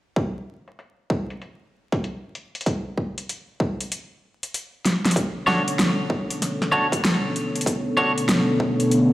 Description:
glitch hop; 96 BPM; 4/4; swing 64% on 16ths; B minor; A4 = 440 Hz
dubstep drum kit; drums; 0.2-9.1 s; hi-hat, snare drum; -24 LUFS; equal; low-pass filter on hats, small room ambience, low-pass filter on snare
electronic kick drum; drums; 0.2-8.8 s; -25 LUFS; equal; high-pass filter on kick, small room ambience
dark analog pad; sustained chords; 5.2-9.1 s; B3 to C#5; -23 LUFS; equal; chorus, sidechain pumping
clean electric guitar; stabs; 5.5-8.1 s; D4 to C#5; -24 LUFS; equal; sidechain pumping, low-pass filter, digital delay
moderate lush hall reverb, RT60 2.4 s; played on a big sound system in a bare room, large studio reverb, vinyl crackle; -21 LUFS; side -16 dB against mid
0.2-5.2 A section; 5.2-9.1 B section
kick drops out 3.9-5.2; drum fill 4.9-5.2; build-up 5.2-9.1; filter sweep 5.2-9.1
0.2 N.C.; 5.2 Bm9
| 0.17 0.79 1.42 2.04 | 2.67 3.29 3.92 4.54 | 5.17 5.79 6.42 7.04 | 7.67 8.29 8.92

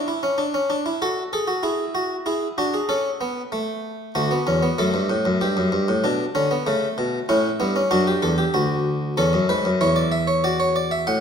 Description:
classical, baroque-style 4-part fugue for harpsichord; 96 BPM; 4/4; straight; D major; A4 = 440 Hz
harpsichord; solo; 0.0-11.2 s; D2 to F#5; -19 LUFS; equal
wet recital hall reverb, RT60 1.6 s; -19 LUFS; side -7 dB against mid
0.0-11.2 A section
0.4 D; 1.6 E7; 2.9 A; 4.2 D; 5.4 G; 6.7 A7; 7.9 D; 9.2 A/E; 10.4 D
0.40 1.03 | 1.65 2.27 2.90 3.53 | 4.16 4.79 5.41 6.04 | 6.67 7.29 7.92 8.55 | 9.18 9.81 10.44 11.07

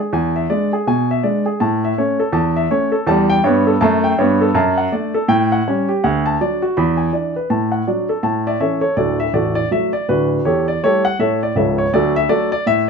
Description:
jazz, stride piano; 163 BPM; 4/4; swing 61% on 8ths; A major, D major from 3.1 s; A4 = 440 Hz
warm baby grand piano; solo; 0.0-12.9 s; A0 to B5; -15 LUFS; equal
moderate small room reverb, RT60 0.5 s; -15 LUFS; side -5 dB against mid
0.0-9.0 A section; 9.0-12.9 B section
0.1 E7; 1.6 A; 3.1 A7/E; 4.6 D/F#; 5.3 A6; 6.0 D; 6.8 E7; 7.5 D/A; 8.2 A; 9.0 D; 10.4 A7/E; 11.9 D
| 0.13 0.50 0.87 1.24 | 1.60 1.97 2.34 2.71 | 3.08 3.45 3.81 4.18 | 4.55 4.92 5.29 5.66 | 6.03 6.39 6.76 7.13 | 7.50 7.87 8.23 8.60 | 8.97 9.34 9.71 10.08 | 10.45 10.81 11.18 11.55 | 11.92 12.29 12.66

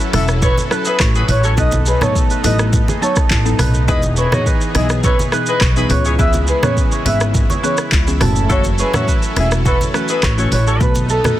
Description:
afrobeats; 104 BPM; 4/4; straight; A4 = 440 Hz
mallet-like synth pluck; accompaniment; 0.0-11.4 s; D#3 to A4; -24 LUFS; left 2 dB; chorus
lush unison pad; sustained chords; 0.0-11.4 s; C#3 to A4; -26 LUFS; left 1 dB; chorus
kora; riff; 0.0-11.4 s; G#4 to E5; -25 LUFS; right 7 dB; digital delay
afro-pop drum kit; drums; 0.0-11.4 s; handclaps, hi-hat, kick drum, rim click, shaker, toms; -17 LUFS; equal; soft clipping on snare
breathy flute-like synth lead; melody; 0.1-11.4 s; A4 to E5; -21 LUFS; equal; chorus, digital delay
warm horn section; second line; 0.1-10.8 s; F#3 to C#5; -25 LUFS; left 3 dB
upright bass; bass; 0.1-11.2 s; E1 to C#2; -18 LUFS; equal
congas; percussion; 0.1-11.4 s; -25 LUFS; right 1 dB
digital ambience; dense, heavily limited modern master; -13 LUFS; side -13 dB against mid
0.0-11.4 A section
0.0 F#m7; 1.6 B7; 3.9 Emaj7; 5.9 C#m7; 8.2 F#m7; 10.8 B7
0.42 1.00 | 1.57 2.15 2.73 3.31 | 3.88 4.46 5.04 5.61 | 6.19 6.77 7.34 7.92 | 8.50 9.07 9.65 10.23 | 10.80 11.38

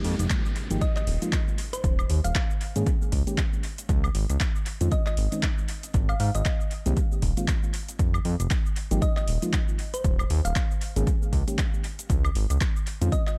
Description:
deep house; 117 BPM; 4/4; swing 58% on 16ths; A4 = 440 Hz
mellow FM electric piano; stabs; 0.0-13.1 s; Eb3 to Ab4; -34 LUFS; equal; chorus, sidechain pumping, tape echo
smooth synth bass; bass; 0.0-13.1 s; Eb1 to Ab2; -27 LUFS; equal; sidechain pumping
deep house drum kit; drums; 0.0-13.4 s; cabasa, handclaps, hi-hat, woodblock; -36 LUFS; equal; studio reverb, tape echo
downlifter; sound effects; 0.0-3.9 s; -44 LUFS; equal
electronic kick drum; drums; 0.3-13.2 s; -28 LUFS; equal; overdrive, studio reverb
thumb-piano-like synth pluck; melody; 0.8-13.3 s; C5 to F5; -38 LUFS; equal; chorus, dub echo
digital ambience; echo-heavy mix; -26 LUFS; mono
0.0-13.4 A section
0.0 Fm11; 1.6 Eb7sus4; 3.6 Dbmaj9; 5.9 Abadd9; 8.0 Fm11; 9.8 Eb7sus4; 11.8 Dbmaj9
0.30 0.81 1.33 | 1.84 2.35 2.87 3.38 | 3.89 4.40 4.92 5.43 | 5.94 6.46 6.97 7.48 | 7.99 8.51 9.02 9.53 | 10.04 10.56 11.07 11.58 | 12.10 12.61 13.12

